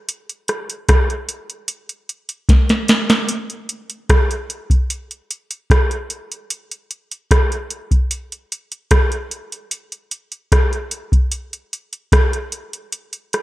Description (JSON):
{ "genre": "reggae", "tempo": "75 BPM", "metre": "4/4", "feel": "straight", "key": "none", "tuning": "none", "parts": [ { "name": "soft vintage rhythm box", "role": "drums", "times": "0.1-13.4 s", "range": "hi-hat, kick drum, rim click, snare drum", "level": "-15 LUFS", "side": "equal", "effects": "gated reverb" } ], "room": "light reverb", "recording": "none", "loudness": "-16 LUFS", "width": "side -17 dB against mid", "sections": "0.0-13.4 A section", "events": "drum fill 2.5-3.3", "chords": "none", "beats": "| 0.08 0.89 1.69 2.49 | 3.29 4.09 4.90 5.70 | 6.50 7.31 8.11 8.91 | 9.71 10.52 11.32 12.12 | 12.92" }